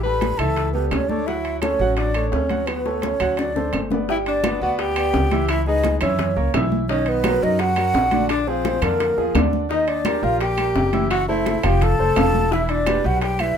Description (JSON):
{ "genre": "Afro-Cuban jazz", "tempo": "171 BPM", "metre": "4/4", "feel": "straight", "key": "D major", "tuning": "A4 = 440 Hz", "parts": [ { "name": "breathy mellow concert flute", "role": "melody", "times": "0.0-13.6 s", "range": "Bb4 to B5", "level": "-24 LUFS", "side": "right 1 dB", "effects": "none" }, { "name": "mellow tenor saxophone", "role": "second line", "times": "0.0-13.6 s", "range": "Bb3 to B4", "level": "-26 LUFS", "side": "left 4 dB", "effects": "none" }, { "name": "clear upright piano", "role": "accompaniment", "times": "0.0-13.6 s", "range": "D3 to G5", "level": "-25 LUFS", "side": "right 3 dB", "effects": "none" }, { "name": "upright bass", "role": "bass", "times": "0.0-13.5 s", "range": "E1 to F#2", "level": "-24 LUFS", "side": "equal", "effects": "none" }, { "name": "bongos", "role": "percussion", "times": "0.0-13.4 s", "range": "none", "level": "-29 LUFS", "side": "left 4 dB", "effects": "none" }, { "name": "congas", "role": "percussion", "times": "0.0-13.6 s", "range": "none", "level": "-28 LUFS", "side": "left 2 dB", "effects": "none" }, { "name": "timbales", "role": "percussion", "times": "0.2-13.6 s", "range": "none", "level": "-29 LUFS", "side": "right 3 dB", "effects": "none" }, { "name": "claves", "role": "percussion", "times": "0.4-13.6 s", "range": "none", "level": "-33 LUFS", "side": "right 5 dB", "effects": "none" } ], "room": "light reverb", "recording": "minimal, uncompressed stereo recording", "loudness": "-18 LUFS", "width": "side -8 dB against mid", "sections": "0.0-4.1 A section; 4.1-13.6 B section", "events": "drum fill 2.7-4.1", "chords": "0.0 A7; 1.3 Dmaj9; 3.4 D7; 4.1 G6; 5.5 C#m9; 6.2 F#7; 6.9 Bmaj7; 8.3 Bb9; 9.7 Ebmaj7; 11.1 F#m7b5; 11.8 F; 12.5 Em7", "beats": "0.22 0.57 0.92 | 1.27 1.62 1.98 2.33 | 2.68 3.03 3.38 3.73 | 4.09 4.44 4.79 5.14 | 5.49 5.84 6.19 6.54 | 6.89 7.25 7.60 7.95 | 8.30 8.65 9.00 9.35 | 9.70 10.05 10.41 10.76 | 11.11 11.46 11.81 12.16 | 12.51 12.86 13.21 13.56" }